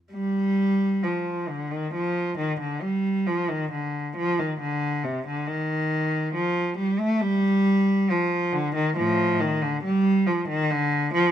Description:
classical, baroque-style suite movement for unaccompanied cello; 68 BPM; 4/4; rubato; A4 = 440 Hz
rich cello; solo; 0.1-11.3 s; A2 to A3; -22 LUFS; equal
light reverb; -22 LUFS; side -10 dB against mid
0.1-11.3 A section

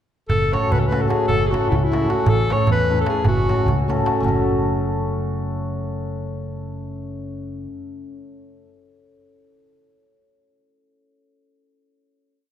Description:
balkan folk, Balkan wedding band; 304 BPM (eighths); 5/8; straight; F# minor; A4 = 440 Hz
warm alto saxophone; melody; 0.3-3.9 s; E4 to C#5; -23 LUFS; left 1 dB
fingered electric bass; bass; 0.3-7.7 s; F#1 to E2; -24 LUFS; equal
darbuka; percussion; 0.3-4.5 s; -22 LUFS; right 3 dB
cimbalom; accompaniment; 0.5-8.6 s; A3 to A4; -24 LUFS; left 2 dB
wet church reverb, RT60 2.5 s; recorded in a church or concert hall; -18 LUFS; side -10 dB against mid
0.3-4.2 A section; 4.2-6.2 final chord
0.3 F#m; 2.3 A; 3.3 F#m

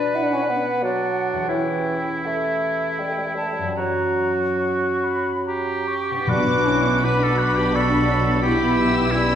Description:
classical, slow romantic movement for symphony orchestra; 64-90 BPM; 3/4; rubato; B minor; A4 = 440 Hz
clear oboe; second line; 0.0-9.4 s; D4 to B4; -24 LUFS; right 2 dB
hollow concert flute; second line; 0.0-9.4 s; D5 to D6; -28 LUFS; equal
dark bassoon; accompaniment; 0.0-9.4 s; E3 to E4; -25 LUFS; right 1 dB
concert harp; arpeggios; 0.0-9.4 s; E2 to C#5; -29 LUFS; left 2 dB
warm symphonic violin section; melody; 6.3-9.4 s; B5 to E6; -28 LUFS; left 6 dB
warm symphonic violin section; second line; 6.3-9.4 s; B3 to G4; -29 LUFS; left 3 dB
warm symphonic viola section; accompaniment; 6.3-9.4 s; C#4 to G4; -29 LUFS; equal
warm French horn section; sustained chords; 6.3-9.4 s; B3 to E4; -28 LUFS; left 2 dB
rich symphonic cello section; bass; 6.3-9.4 s; B2; -26 LUFS; right 1 dB
rich symphonic double bass section; bass; 6.3-9.4 s; B1; -25 LUFS; right 2 dB
timpani; percussion; 6.3-7.3 s; B2; -27 LUFS; left 1 dB
wet recital hall reverb, RT60 1.6 s; recorded in a church or concert hall; -19 LUFS; side -9 dB against mid
0.0-6.3 A section; 6.3-9.4 A section
0.0 Bm; 1.5 C#dim/E; 3.8 F#; 6.3 Bm; 8.4 Em/B

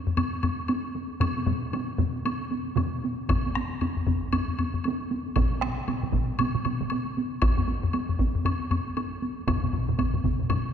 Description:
japanese traditional, taiko drum ensemble; 116 BPM; 4/4; swing 60% on 16ths
solo taiko drums; percussion; 0.1-10.6 s; -30 LUFS; left 4 dB
taiko ensemble; percussion; 0.1-10.7 s; -30 LUFS; right 2 dB
woodblock; percussion; 0.2-10.6 s; -35 LUFS; left 3 dB
taiko ensemble; percussion; 1.2-10.6 s; -31 LUFS; right 3 dB
taiko ensemble; percussion; 3.3-10.4 s; -29 LUFS; equal
wet concert hall reverb, RT60 2.5 s; dark, warm production; -25 LUFS; side -8 dB against mid
0.0-10.7 A section

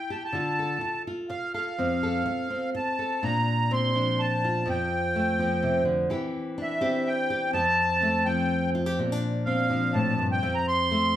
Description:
acoustic folk duo or small band; 125 BPM; 3/4; straight; F major; A4 = 440 Hz
accordion; melody; 0.0-11.2 s; E5 to C6; -27 LUFS; equal; light tremolo tuning
nylon-string guitar; accompaniment; 0.0-11.2 s; F2 to A4; -26 LUFS; equal
wet large studio reverb, RT60 0.8 s; band playing live in one room; -24 LUFS; side -12 dB against mid
0.0-3.2 A section; 3.2-11.2 B section
0.3 Dm; 1.8 F; 3.2 Bbadd9; 4.7 Fadd9; 6.1 Cadd9/E; 7.5 Fadd9; 9.0 Bbadd9; 10.4 F

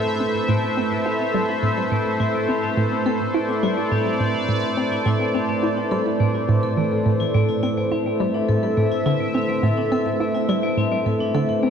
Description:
ambient, sequencer-driven space music; 105 BPM; 4/4; straight; A4 = 435 Hz
sweeping resonant pad; sustained chords; 0.0-11.7 s; A3 to E5; -22 LUFS; equal; chorus
vibraphone with hard mallets; arpeggios; 0.0-11.7 s; A3 to A4; -28 LUFS; left 1 dB; auto-pan, analog delay
hollow square pluck; riff; 0.0-11.7 s; A2 to E4; -23 LUFS; right 1 dB; chorus, phaser, analog delay
wet cathedral reverb, RT60 4.9 s; in a vast, echoing space; -19 LUFS; side -7 dB against mid
0.0-11.7 A section
0.0 Amadd9

